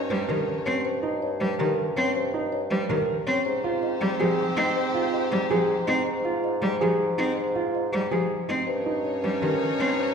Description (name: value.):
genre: classical, minimalist pattern music.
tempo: 322 BPM (eighths).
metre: 7/8.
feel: straight.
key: Ab major.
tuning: A4 = 436 Hz.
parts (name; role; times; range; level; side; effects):
marimba with soft mallets; melody; 0.0-10.1 s; G4 to Eb5; -32 LUFS; left 7 dB; none.
bright clarinet; second line; 0.0-0.6, 3.5-5.8, 8.7-10.1 s; C4 to Db4; -33 LUFS; right 4 dB; none.
rich studio violin section; sustained chords; 0.0-0.6, 3.5-5.8, 8.7-10.1 s; Eb4 to Db5; -34 LUFS; left 4 dB; none.
mellow bassoon; bass; 0.0-10.1 s; G2 to Ab2; -29 LUFS; left 1 dB; none.
rich cello; accompaniment; 0.1-9.9 s; Eb3 to C4; -28 LUFS; equal; none.
dark concert grand piano; arpeggios; 0.1-10.0 s; Db4 to C5; -28 LUFS; right 4 dB; none.
room: wet scoring stage reverb, RT60 1.6 s.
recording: heard from further back in the room.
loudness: -23 LUFS.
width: side -6 dB against mid.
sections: 0.0-10.1 A section.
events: none.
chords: 0.0 Eb7/G; 3.5 Abmaj7; 8.7 Eb7/G.